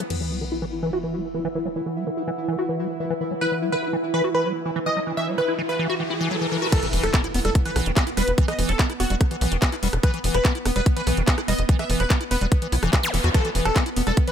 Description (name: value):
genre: psychedelic trance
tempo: 145 BPM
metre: 4/4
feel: straight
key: unclear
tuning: A4 = 440 Hz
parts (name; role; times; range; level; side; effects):
- pulsing gated texture; sustained chords; 0.0-14.3 s; E3 to E4; -29 LUFS; right 1 dB; chorus, built-in reverb, sidechain pumping
- liquid acid bass; riff; 0.0-14.3 s; D#3 to F#4; -28 LUFS; moving between left 5 dB and right 5 dB; chorus, auto-pan, sidechain pumping, ping-pong delay
- garage drum kit; drums; 0.0-0.2, 6.7-14.3 s; crash cymbal, handclaps, hi-hat, rim click; -28 LUFS; equal; none
- warbly tape-like pad; texture; 0.0-6.7 s; E4 to E6; -34 LUFS; right 1 dB; chorus, built-in reverb, sidechain pumping
- sub drop, riser, impact and zap; sound effects; 0.1-8.4, 13.0-13.1 s; none; -31 LUFS; equal; none
- supersaw stab; melody; 3.4-14.3 s; F#4 to E5; -27 LUFS; equal; phaser, cassette tape, sidechain pumping, tape echo
- electronic kick drum; drums; 6.7-14.3 s; none; -19 LUFS; equal; none
- tight sequencer bass; bass; 6.9-14.1 s; E1 to E2; -24 LUFS; equal; none
room: light reverb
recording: none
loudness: -20 LUFS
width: side -8 dB against mid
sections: 0.1-6.7 A section; 6.7-14.3 B section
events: impact 0.1-1.8, 6.7-8.4; filter sweep on acid bass 0.1-6.7; filter sweep on synth texture 0.1-6.7; riser 4.6-6.7; drop 6.7-14.3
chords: 0.1 E5